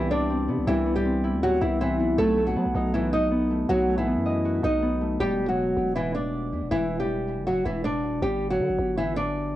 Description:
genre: hip hop, trap.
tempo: 159 BPM.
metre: 4/4.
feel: half-time.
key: E minor.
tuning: A4 = 440 Hz.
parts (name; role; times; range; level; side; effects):
flamenco guitar; melody; 0.0-9.6 s; E3 to D#5; -24 LUFS; equal; cassette tape.
Celtic harp; accompaniment; 0.0-8.3 s; E3 to D#5; -28 LUFS; left 1 dB; cassette tape.
growling 808-style bass; bass; 0.0-9.6 s; D1 to F#3; -30 LUFS; equal; none.
room: light reverb.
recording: home recording on cassette.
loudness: -22 LUFS.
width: side -14 dB against mid.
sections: 0.0-5.2 A section; 5.2-9.6 B section.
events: none.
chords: 0.0 Cmaj7; 2.2 B7; 5.2 Em7; 8.2 G5.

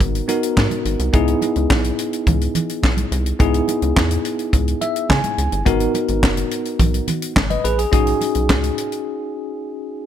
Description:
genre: early-eighties boogie funk.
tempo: 106 BPM.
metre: 4/4.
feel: straight.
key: C# dorian.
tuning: A4 = 441 Hz.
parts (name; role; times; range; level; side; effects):
bell-like tine electric piano; accompaniment; 0.0-10.1 s; B3 to G#5; -21 LUFS; left 1 dB; medium stereo tremolo.
rubbery square bass; bass; 0.0-8.7 s; F#1 to C#3; -20 LUFS; equal; none.
tight funk drum kit; drums; 0.0-9.1 s; handclaps, hi-hat, kick drum, snare drum; -20 LUFS; equal; none.
congas; percussion; 0.0-8.6 s; none; -26 LUFS; right 4 dB; none.
room: little or no reverb.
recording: none.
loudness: -16 LUFS.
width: side -10 dB against mid.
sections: 0.0-10.1 A section.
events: tine electric piano fill 4.5-5.7; break 9.1-10.1.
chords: 0.0 G#m7; 1.1 C#m7; 5.7 G#m7; 7.9 B69.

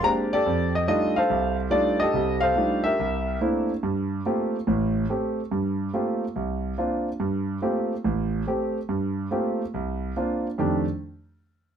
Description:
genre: solo jazz.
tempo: 142 BPM.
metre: 4/4.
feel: swing 68% on 8ths.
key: F mixolydian.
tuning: A4 = 438 Hz.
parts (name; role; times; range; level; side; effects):
warm concert grand piano; solo; 0.0-10.8 s; A1 to Bb5; -23 LUFS; right 1 dB; none.
room: light reverb.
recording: close, detailed microphones.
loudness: -23 LUFS.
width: side -8 dB against mid.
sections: 0.0-3.8 A section; 3.8-10.6 B section; 10.6-11.8 C section.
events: none.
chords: 0.5 F13; 3.0 C13; 3.8 Gm11; 4.7 Am7; 5.5 Gm11; 6.4 C9sus4; 7.2 Gm11; 8.0 Am7; 8.9 Gm11; 9.7 C9sus4; 10.6 F13.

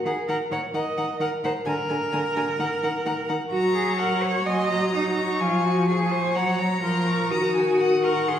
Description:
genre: quick classical-period movement for string quartet.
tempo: 128 BPM.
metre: 4/4.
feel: rubato.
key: unclear.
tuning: A4 = 440 Hz.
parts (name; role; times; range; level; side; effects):
warm violin; melody; 0.1-8.4 s; Bb5 to Eb6; -31 LUFS; left 6 dB; none.
rich violin; second line; 0.1-8.4 s; Gb5 to Bb5; -29 LUFS; left 2 dB; none.
warm viola; accompaniment; 0.1-8.4 s; D3 to Gb3; -26 LUFS; right 1 dB; none.
rich cello; bass; 0.1-8.4 s; Eb4 to Eb5; -25 LUFS; right 1 dB; none.
room: wet recital hall reverb, RT60 1.4 s.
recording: heard from further back in the room.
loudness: -21 LUFS.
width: side -9 dB against mid.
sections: 0.0-8.4 A section.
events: none.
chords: 0.0 Ebm; 1.7 Bb7/D; 2.6 Ebm; 3.5 Gb; 4.5 Ab7/Gb; 5.4 Db/F; 6.4 Gb; 7.3 Ebm.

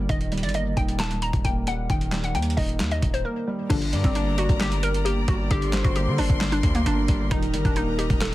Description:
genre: hip hop, trap.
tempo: 133 BPM.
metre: 4/4.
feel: half-time.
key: G minor.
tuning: A4 = 439 Hz.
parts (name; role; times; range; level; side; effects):
hollow square pluck; melody; 0.0-8.3 s; Bb3 to Bb5; -29 LUFS; left 1 dB; chorus, digital delay.
dark grand piano; accompaniment; 0.0-8.3 s; D3 to Eb4; -29 LUFS; right 2 dB; none.
distorted 808-style bass; bass; 0.0-8.3 s; Eb1 to D3; -26 LUFS; equal; distortion.
boom bap sampler-style drum kit; drums; 0.1-8.3 s; crash cymbal, handclaps, hi-hat, kick drum, snare drum; -25 LUFS; equal; overdrive.
warm chamber string section; sustained chords; 3.7-8.3 s; G4 to C6; -34 LUFS; left 3 dB; none.
dark brass ensemble; stabs; 3.7-3.8, 7.3-7.5 s; Bb1 to Eb3; -37 LUFS; left 5 dB; none.
gliding portamento lead; second line; 3.9-8.2 s; Bb4 to D5; -33 LUFS; left 5 dB; chorus, digital delay.
room: little or no reverb.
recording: dense, heavily limited modern master, vinyl crackle.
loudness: -21 LUFS.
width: side -16 dB against mid.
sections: 0.0-3.7 A section; 3.7-8.3 B section.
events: break 3.3-3.7.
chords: 0.1 Eb; 3.7 Gm; 7.3 Eb.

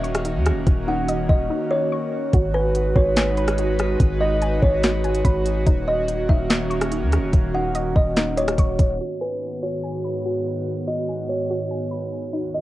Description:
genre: hip hop, atmospheric cloud-rap.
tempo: 144 BPM.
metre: 4/4.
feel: half-time.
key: G# minor.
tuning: A4 = 440 Hz.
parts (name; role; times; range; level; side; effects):
airy breathy pad; sustained chords; 0.0-12.6 s; D#2 to B4; -26 LUFS; right 1 dB; chorus, sidechain pumping.
soft round pluck; arpeggios; 0.0-12.6 s; D#4 to C#6; -32 LUFS; left 1 dB; chorus, analog delay.
long sustained 808-style bass; bass; 0.0-9.0 s; D#1 to D#2; -24 LUFS; equal; none.
smooth R&B drum kit; drums; 0.0-8.9 s; hi-hat, kick drum, rim click, snare drum; -20 LUFS; equal; cassette tape.
kalimba; melody; 0.9-12.6 s; B4 to F#5; -25 LUFS; equal; cassette tape, analog delay.
room: moderate spring reverb, RT60 2.1 s.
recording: home recording on cassette, low-pass filter.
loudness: -19 LUFS.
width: side -16 dB against mid.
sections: 0.0-9.0 A section; 9.0-12.6 B section.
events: break 1.5-2.3.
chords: 0.0 D#m7; 2.3 G#m7; 5.7 D#m7; 9.0 G#m7.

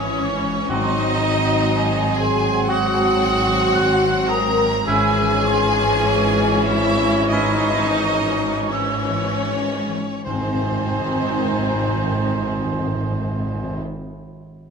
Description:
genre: classical, slow romantic movement for symphony orchestra.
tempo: 37-63 BPM.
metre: 4/4.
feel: rubato.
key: Ab major.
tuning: A4 = 445 Hz.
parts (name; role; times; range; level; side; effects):
rich chamber violin section; melody; 0.0-13.8 s; C5 to Bb5; -26 LUFS; equal; none.
mellow hollow small flute group; second line; 0.0-13.8 s; Ab5 to Gb6; -26 LUFS; right 3 dB; none.
rich chamber violin section; second line; 0.0-13.8 s; C4 to Bb4; -27 LUFS; left 1 dB; none.
rich studio viola section; accompaniment; 0.0-13.8 s; Eb3 to Eb4; -27 LUFS; left 2 dB; none.
mellow French horn section; sustained chords; 0.0-13.8 s; C4 to Bb4; -25 LUFS; left 3 dB; none.
warm trombone section; sustained chords; 0.0-13.8 s; Eb3 to Db4; -29 LUFS; right 5 dB; none.
concert harp; arpeggios; 0.0-14.2 s; Ab2 to Ab5; -30 LUFS; left 9 dB; none.
rich chamber double bass section; bass; 0.0-13.8 s; Ab1; -28 LUFS; right 3 dB; none.
rich symphonic cello section; bass; 0.0-13.8 s; Ab2; -27 LUFS; right 3 dB; none.
warm clarinet; second line; 0.7-13.8 s; C4 to Eb4; -32 LUFS; left 1 dB; none.
warm cor anglais; second line; 0.7-13.8 s; Fb4 to C5; -30 LUFS; right 4 dB; none.
timpani; percussion; 0.7-2.1, 10.3-13.8 s; Ab2; -27 LUFS; left 1 dB; none.
room: moderate recital hall reverb, RT60 1.8 s.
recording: none.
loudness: -17 LUFS.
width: side -6 dB against mid.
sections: 0.0-10.3 A section; 10.3-14.7 B section.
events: slowing down 0.0-10.3.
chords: 0.0 Dbm/Ab; 0.7 Ab7; 4.9 Dbm/Ab; 10.3 Ab.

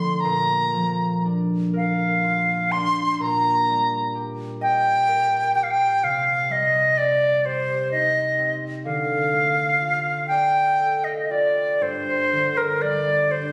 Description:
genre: celtic folk, Celtic slow air.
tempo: 41 BPM (dotted quarters).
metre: 6/8.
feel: uneven beats, rubato.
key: G minor.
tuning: A4 = 442 Hz.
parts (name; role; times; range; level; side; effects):
bright reedy wooden flute; melody; 0.0-13.5 s; Bb4 to C6; -22 LUFS; equal; none.
concert harp; accompaniment; 0.0-13.5 s; D2 to G5; -29 LUFS; equal; none.
room: moderate scoring stage reverb, RT60 1.8 s.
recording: recorded on a phone in the room, studio reverb, compression.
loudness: -21 LUFS.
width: mono.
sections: 0.0-11.8 A section; 11.8-13.5 B section.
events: harp fill 10.3-11.8.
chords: 0.2 Bb; 3.2 Eb/Bb; 6.0 Cm; 8.9 Dm; 11.8 G5.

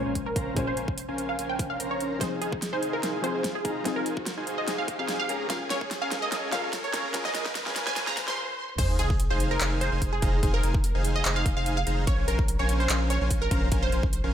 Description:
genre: future bass.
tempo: 146 BPM.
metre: 4/4.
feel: swing 53% on 16ths, half-time.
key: F minor.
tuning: A4 = 441 Hz.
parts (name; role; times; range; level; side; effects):
wide unison pluck; melody; 0.0-14.1 s; Ab4 to C6; -31 LUFS; right 2 dB; phaser, sidechain pumping, digital delay.
soft round pluck; accompaniment; 0.0-8.8 s; Bb2 to C5; -35 LUFS; left 3 dB; chorus, cassette tape, sidechain pumping, digital delay.
dense compressed supersaw; riff; 0.0-14.3 s; Db4 to C6; -32 LUFS; equal; sidechain pumping, low-pass filter.
saturated sub bass; bass; 0.0-14.3 s; F1 to Db2; -30 LUFS; equal; sidechain pumping.
riser and sub drop; sound effects; 0.2-10.4 s; none; -36 LUFS; equal; none.
big-room dance drum kit; drums; 0.2-14.2 s; crash cymbal, handclaps, hi-hat, snare drum, toms; -32 LUFS; equal; overdrive.
electronic kick drum; drums; 0.2-14.1 s; none; -28 LUFS; equal; overdrive.
room: light reverb.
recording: high-pass filter.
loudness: -25 LUFS.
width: side -10 dB against mid.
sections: 0.0-8.8 A section; 8.8-14.3 B section.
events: build-up 0.0-8.8; filter sweep on supersaw synth 0.0-8.8; filter sweep on synth pluck 0.0-8.8; filter sweep 0.0-8.8; riser 0.2-8.4; drum fill 2.2-8.4, 8.4-8.8; break 8.4-8.8; drop 8.8-14.3; impact 8.8-10.4.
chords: 0.0 Bbm9; 2.2 Fm7; 5.3 Db6; 8.8 Fm7; 12.1 Bbm9.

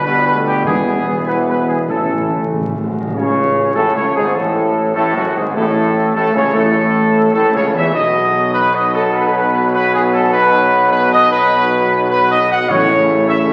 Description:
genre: classical.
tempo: 100 BPM.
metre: 4/4.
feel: straight.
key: A major, A lydian from 3.1 s.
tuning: A4 = 440 Hz.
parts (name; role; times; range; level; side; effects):
mellow trumpet section; melody; 0.0-13.5 s; F#4 to F#5; -17 LUFS; equal; none.
mellow tuba; bass; 0.0-13.5 s; E1 to E2; -24 LUFS; equal; none.
bright trombone section; sustained chords; 0.1-13.5 s; F#2 to B3; -20 LUFS; equal; none.
mellow French horn section; sustained chords; 0.1-13.5 s; F#3 to G#4; -24 LUFS; equal; none.
timpani; percussion; 0.6-3.1, 12.7-13.5 s; E2 to A2; -26 LUFS; equal; none.
room: wet concert hall reverb, RT60 1.8 s.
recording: very old 78 rpm record, vinyl crackle.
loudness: -15 LUFS.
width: mono.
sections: 0.0-3.1 A section; 3.1-13.5 B section.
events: timpani fill 1.9-3.1.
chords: 0.0 G; 0.7 E; 1.9 A; 7.9 B; 12.7 A.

